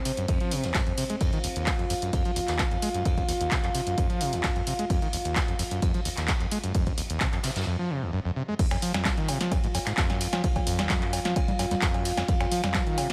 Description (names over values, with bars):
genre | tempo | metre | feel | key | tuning
acid house | 130 BPM | 4/4 | straight | unclear | A4 = 445 Hz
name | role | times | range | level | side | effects
dark analog pad | sustained chords | 0.0-13.1 s | C4 to F5 | -35 LUFS | equal | chorus, sidechain pumping
overdriven acid bass | riff | 0.1-13.1 s | Eb2 to Ab3 | -33 LUFS | equal | distortion, tube saturation, digital delay
punchy analog drum machine | drums | 0.1-13.1 s | congas, cowbell, crash cymbal, finger snaps, handclaps, hi-hat, snare drum | -33 LUFS | equal | none
vintage brush drum kit | drums | 0.1-13.1 s | ride cymbal, snare drum | -43 LUFS | equal | high-pass filter on cymbals, high-pass filter on snare, high-pass filter on room
electronic kick drum | drums | 0.3-12.8 s | none | -30 LUFS | equal | none
room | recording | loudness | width
light reverb | none | -27 LUFS | mono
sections
0.0-8.6 A section; 8.6-13.1 B section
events
break 7.7-8.6; drop 8.6-13.1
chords
0.0 F5; 8.6 N.C.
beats
0.28 0.75 | 1.21 1.67 2.13 2.59 | 3.06 3.52 3.98 4.44 | 4.90 5.36 5.82 6.29 | 6.75 7.21 7.67 8.13 | 8.59 9.05 9.52 9.98 | 10.44 10.90 11.36 11.82 | 12.29 12.75